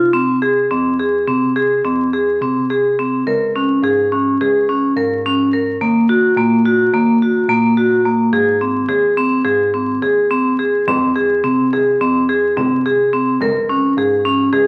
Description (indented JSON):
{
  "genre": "contemporary instrumental, chamber music in an uneven meter",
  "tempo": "213 BPM (eighths)",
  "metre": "9/8",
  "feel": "straight",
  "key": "F phrygian",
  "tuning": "A4 = 435 Hz",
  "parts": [
    { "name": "vibraphone with hard mallets", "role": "arpeggios", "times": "0.0-14.7 s", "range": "Bb3 to Bb4", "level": "-16 LUFS", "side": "equal", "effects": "none" },
    { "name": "bell-like tine electric piano", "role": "bass", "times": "0.0-14.7 s", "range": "Db2 to C3", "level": "-33 LUFS", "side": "equal", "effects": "none" },
    { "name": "frame drum", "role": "percussion", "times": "10.9-14.7 s", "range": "none", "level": "-32 LUFS", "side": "equal", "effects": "none" }
  ],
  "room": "wet recital hall reverb, RT60 1.5 s",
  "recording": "very old 78 rpm record, vinyl crackle",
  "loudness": "-16 LUFS",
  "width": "mono",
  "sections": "0.7-14.7 A section",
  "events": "none",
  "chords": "0.0 Fm (rootless); 0.7 Fm; 3.3 Db5; 5.8 Ebm; 8.3 Ab; 10.9 Fm; 13.4 Db5"
}